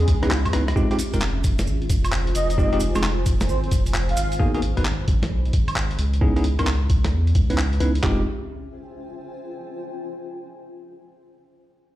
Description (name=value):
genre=UK garage, two-step garage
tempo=132 BPM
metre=4/4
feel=swing 66% on 16ths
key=F minor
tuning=A4 = 440 Hz
part: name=breathy flute-like synth lead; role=melody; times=0.0-4.4 s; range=Ab4 to F5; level=-28 LUFS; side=equal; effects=ensemble chorus, ping-pong delay
part: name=saturated sub bass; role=bass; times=0.0-8.2 s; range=F1 to Fb2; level=-22 LUFS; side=equal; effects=none
part: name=boom bap sampler-style drum kit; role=drums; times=0.0-8.0 s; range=handclaps, hi-hat, rim click, snare drum, woodblock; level=-28 LUFS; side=equal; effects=none
part: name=granular cloud pad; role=texture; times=0.0-9.8 s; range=Db4 to Cb6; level=-34 LUFS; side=left 1 dB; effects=built-in reverb, sidechain pumping
part: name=boom bap sampler-style drum kit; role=drums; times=0.1-8.2 s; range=handclaps, kick drum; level=-22 LUFS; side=equal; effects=none
part: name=bell-like tine electric piano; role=stabs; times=0.2-8.2 s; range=Ab3 to Cb5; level=-25 LUFS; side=equal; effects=fast stereo tremolo, low-pass filter, ping-pong delay
part: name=maracas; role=percussion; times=0.8-4.4 s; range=none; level=-37 LUFS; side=right 3 dB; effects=none
room=little or no reverb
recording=played on a big sound system in a bare room, large studio reverb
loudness=-19 LUFS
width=side -15 dB against mid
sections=0.8-8.0 A section; 8.0-9.9 B section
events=drum fill 0.0-0.8; fade-out on ambient pad 0.8-8.0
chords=0.0 Dbm9; 0.8 Fm7; 4.4 Abm9; 6.0 Dbm9; 8.0 Fmadd9